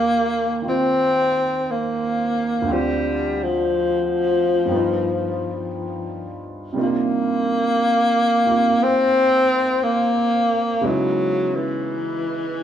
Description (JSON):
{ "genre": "jazz ballad", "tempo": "59 BPM", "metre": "4/4", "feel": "swing 68% on 8ths", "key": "unclear", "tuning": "A4 = 440 Hz", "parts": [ { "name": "breathy tenor saxophone", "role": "melody", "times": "0.0-12.6 s", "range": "Fb3 to C4", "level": "-19 LUFS", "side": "left 1 dB", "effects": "none" }, { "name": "warm concert grand piano", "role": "accompaniment", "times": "0.0-12.6 s", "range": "D2 to C5", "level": "-25 LUFS", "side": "right 3 dB", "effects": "none" } ], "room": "moderate plate reverb, RT60 3.6 s", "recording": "worn, warbling old tape, cassette tape, warbly pitch drift, small room ambience", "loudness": "-18 LUFS", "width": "side -9 dB against mid", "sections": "0.0-12.6 A section", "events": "none", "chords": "0.0 Ebmaj9; 2.7 Dm7; 4.7 G7b13; 6.8 Cm11; 10.8 Dbm7" }